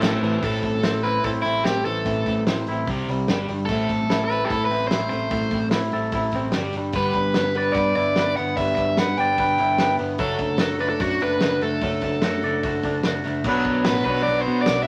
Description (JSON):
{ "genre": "indie rock", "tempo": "148 BPM", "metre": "4/4", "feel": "straight", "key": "A dorian", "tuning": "A4 = 440 Hz", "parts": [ { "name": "overdriven electric guitar", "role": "melody", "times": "0.0-14.9 s", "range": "E4 to G5", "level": "-26 LUFS", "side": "equal", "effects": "none" }, { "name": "distorted electric guitar", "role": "riff", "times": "0.0-14.9 s", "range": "F#3 to A4", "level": "-32 LUFS", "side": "equal", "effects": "overdrive" }, { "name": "twangy electric guitar", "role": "riff", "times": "0.0-14.9 s", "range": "A2 to D5", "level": "-28 LUFS", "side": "equal", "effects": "none" }, { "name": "picked electric bass", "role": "bass", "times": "0.0-14.9 s", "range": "F#1 to B2", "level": "-32 LUFS", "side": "equal", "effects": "none" }, { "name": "loose indie drum kit", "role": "drums", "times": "0.0-14.8 s", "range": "crash cymbal, hi-hat, kick drum, snare drum", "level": "-29 LUFS", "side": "equal", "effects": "none" } ], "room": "moderate small room reverb, RT60 0.5 s", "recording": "vinyl crackle", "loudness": "-22 LUFS", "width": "mono", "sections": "0.4-13.4 A section; 13.4-14.9 B section", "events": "none", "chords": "0.4 Am; 2.9 C5; 3.3 G5; 3.7 Am; 6.5 G5; 6.9 G6; 10.2 D/F#; 13.4 Bm", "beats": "0.03 | 0.44 0.84 1.25 1.66 | 2.06 2.47 2.88 3.29 | 3.69 4.10 4.50 4.91 | 5.32 5.72 6.13 6.54 | 6.94 7.35 7.76 8.16 | 8.57 8.98 9.38 9.79 | 10.20 10.60 11.01 11.42 | 11.82 12.23 12.64 13.04 | 13.45 13.86 14.26 14.67" }